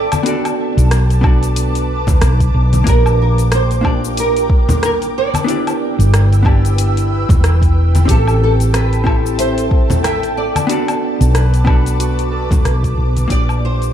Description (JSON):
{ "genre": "sunset chillout", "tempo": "92 BPM", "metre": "4/4", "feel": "swing 58% on 16ths", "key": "unclear", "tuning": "A4 = 443 Hz", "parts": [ { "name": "nylon-string guitar", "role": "melody", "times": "0.0-13.9 s", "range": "A4 to E5", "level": "-21 LUFS", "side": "right 2 dB", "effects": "ensemble chorus, ping-pong delay" }, { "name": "vintage hollow-body jazz guitar", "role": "accompaniment", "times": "0.0-13.9 s", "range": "Bb3 to E5", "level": "-22 LUFS", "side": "moving between left 4 dB and right 3 dB", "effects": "auto-pan, ping-pong delay" }, { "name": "ethereal airy pad", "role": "sustained chords", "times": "0.0-13.9 s", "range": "Bb3 to E6", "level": "-24 LUFS", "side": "equal", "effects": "ensemble chorus, built-in reverb, tremolo" }, { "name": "woody fretless electric bass", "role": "bass", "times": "0.0-13.9 s", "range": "E1 to B1", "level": "-14 LUFS", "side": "equal", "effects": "analog chorus" }, { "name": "deep house drum kit", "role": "drums", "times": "0.1-13.9 s", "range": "cabasa, hi-hat, rim click, woodblock", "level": "-24 LUFS", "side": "left 2 dB", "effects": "overdrive" }, { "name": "congas", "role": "percussion", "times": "0.1-13.3 s", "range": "none", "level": "-20 LUFS", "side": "left 1 dB", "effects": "none" }, { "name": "electronic kick drum", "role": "drums", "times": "1.2-13.5 s", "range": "none", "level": "-14 LUFS", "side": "equal", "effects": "overdrive" }, { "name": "concert harp", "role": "arpeggios", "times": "8.1-13.9 s", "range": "C4 to A5", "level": "-26 LUFS", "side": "right 1 dB", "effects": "ping-pong delay" } ], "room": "light reverb", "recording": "none", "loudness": "-12 LUFS", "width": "side -10 dB against mid", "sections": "0.0-13.9 A section", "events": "fade-out 11.6-13.9", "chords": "0.3 Bm7; 2.9 Bb6; 5.5 G6; 8.1 Am7; 10.7 Bm7; 13.3 Bb6", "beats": "| 0.26 0.91 1.56 2.21 | 2.87 3.52 4.17 4.82 | 5.47 6.13 6.78 7.43 | 8.08 8.73 9.39 10.04 | 10.69 11.34 12.00 12.65 | 13.30" }